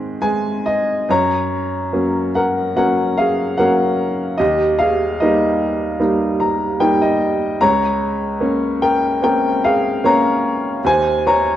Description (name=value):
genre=classical, lyrical solo piano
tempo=74 BPM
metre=4/4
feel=rubato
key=unclear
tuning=A4 = 441 Hz
part: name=clear upright piano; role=solo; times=0.0-11.6 s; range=Db2 to Bb5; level=-15 LUFS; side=equal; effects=none
room=moderate scoring stage reverb, RT60 1.6 s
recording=worn, warbling old tape, cassette tape, warbly pitch drift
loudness=-15 LUFS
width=side -12 dB against mid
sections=0.0-1.1 A section; 1.1-11.6 B section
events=upright piano fill 0.0-1.1, 6.0-7.6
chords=0.0 Ab; 1.1 Gb; 4.4 Eb; 7.6 Bbmadd9/Db; 10.8 Ab/Eb